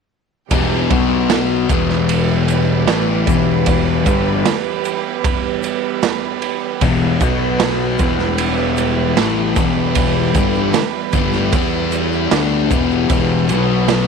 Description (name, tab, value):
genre	psychedelic rock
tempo	76 BPM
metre	4/4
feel	straight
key	E minor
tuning	A4 = 441 Hz
part	rich chamber string section	sustained chords	0.5-14.1 s	E3 to B4	-22 LUFS	right 14 dB	none
part	thick fuzz guitar	riff	0.5-14.1 s	E2 to E4	-18 LUFS	left 12 dB	distortion, phaser
part	fuzz fingered electric bass	bass	0.5-14.1 s	E1 to E2	-20 LUFS	equal	overdrive
part	raw garage drum kit	drums	0.5-14.1 s	kick drum, ride cymbal, snare drum	-19 LUFS	right 4 dB	none
part	egg shaker	percussion	0.5-14.1 s	none	-39 LUFS	left 23 dB	none
room	light reverb, small room ambience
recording	1960s-style stereo with parts hard left and right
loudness	-14 LUFS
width	side -5 dB against mid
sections	0.5-14.1 A section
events	none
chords	0.5 Em; 0.9 B5; 1.7 Em; 7.2 B5; 8.0 Em; 13.5 B5